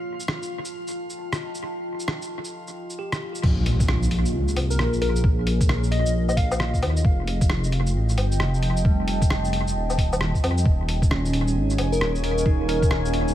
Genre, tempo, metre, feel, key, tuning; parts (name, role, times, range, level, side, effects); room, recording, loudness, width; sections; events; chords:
future garage; 133 BPM; 4/4; swing 63% on 16ths; Bb dorian; A4 = 442 Hz
deep dark ambient pad; sustained chords; 0.0-13.3 s; Bb3 to A5; -31 LUFS; left 2 dB; chorus, built-in reverb, vintage 12-bit sampler grit, sidechain pumping
drifting glass-harmonics texture; texture; 0.0-3.5, 11.2-13.3 s; F4 to Ab5; -39 LUFS; right 4 dB; chorus, built-in reverb
lo-fi sampler-style drum kit; drums; 0.2-13.3 s; crash cymbal, hi-hat, rim click, shaker, woodblock; -29 LUFS; equal; studio reverb, analog delay
bell-like tine electric piano; accompaniment; 3.0-13.3 s; G3 to G4; -32 LUFS; right 4 dB; fast stereo tremolo, sidechain pumping, tape echo
dark detuned saw bass; bass; 3.4-13.3 s; Eb1 to F2; -23 LUFS; equal; sidechain pumping
electronic kick drum; drums; 3.4-12.9 s; -21 LUFS; equal; studio reverb
impact; sound effects; 3.4-5.2 s; -30 LUFS; equal
plucky unison lead; melody; 4.7-6.8, 11.9-13.1 s; Bb4 to F5; -30 LUFS; left 1 dB; dub echo
little or no reverb; echo-heavy mix, vinyl crackle; -20 LUFS; side -12 dB against mid
0.0-3.4 A section; 3.4-13.3 B section
impact 3.4-5.2
0.0 F7; 3.4 Bbm7; 7.0 F7; 10.7 Eb7sus4